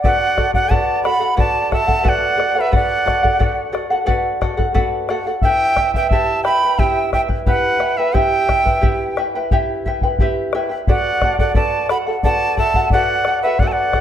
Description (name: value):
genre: andean folk, Andean ensemble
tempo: 88 BPM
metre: 4/4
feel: straight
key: unclear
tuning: A4 = 440 Hz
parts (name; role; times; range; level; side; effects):
- bright quena; melody; 0.0-14.0 s; E5 to B5; -18 LUFS; right 1 dB; none
- mellow soprano saxophone; second line; 0.0-14.0 s; B4 to G5; -23 LUFS; right 5 dB; none
- charango; accompaniment; 0.0-14.0 s; E4 to G5; -20 LUFS; left 1 dB; none
- bombo; percussion; 0.0-14.0 s; none; -19 LUFS; left 1 dB; none
room: moderate recital hall reverb, RT60 1.3 s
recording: faint mains hum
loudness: -15 LUFS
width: side -10 dB against mid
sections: 0.0-14.0 A section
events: none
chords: 0.0 D; 5.4 Em; 10.9 D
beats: | 0.03 0.71 1.38 2.06 | 2.73 3.41 4.08 4.76 | 5.44 6.11 6.79 7.47 | 8.15 8.83 9.51 10.19 | 10.87 11.55 12.23 12.91 | 13.60